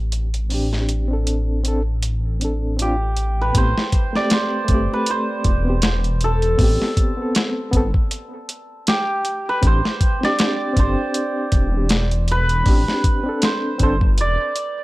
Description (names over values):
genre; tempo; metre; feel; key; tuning
trip hop; 79 BPM; 4/4; swing 56% on 16ths; A minor; A4 = 440 Hz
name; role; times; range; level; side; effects
dark detuned saw bass; bass; 0.0-14.4 s; E1 to A1; -20 LUFS; equal; tube saturation
dusty soul sampler-style drum kit; drums; 0.1-14.8 s; hi-hat, kick drum, snare drum; -19 LUFS; equal; overdrive, high-pass filter on hats, high-pass filter on snare, high-pass filter on kick
reed electric piano; accompaniment; 0.5-14.0 s; A3 to A4; -25 LUFS; left 1 dB; tremolo
hammered dulcimer; melody; 2.8-14.8 s; G4 to D5; -23 LUFS; right 2 dB; none
room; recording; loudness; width
digital ambience; none; -17 LUFS; side -19 dB against mid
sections
0.0-3.5 A section; 3.5-14.8 B section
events
none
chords
0.0 Gsus4/A; 3.5 Am9; 9.6 Gsus4